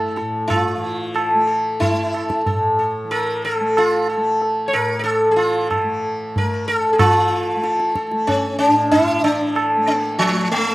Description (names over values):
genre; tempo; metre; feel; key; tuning
indian classical, Hindustani; 93 BPM; 5/4; straight; unclear; A4 = 440 Hz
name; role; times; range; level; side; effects
sitar; melody; 0.0-10.7 s; F3 to C#5; -17 LUFS; equal; slapback echo
tanpura; drone; 0.0-10.7 s; A2 to A3; -30 LUFS; left 2 dB; none
tabla; percussion; 0.2-10.4 s; none; -24 LUFS; right 2 dB; none
room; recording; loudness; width
little or no reverb; recorded outdoors, with no room sound; -16 LUFS; side -18 dB against mid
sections
0.0-7.0 A section; 7.0-10.7 B section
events
speeding up 0.0-10.7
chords
none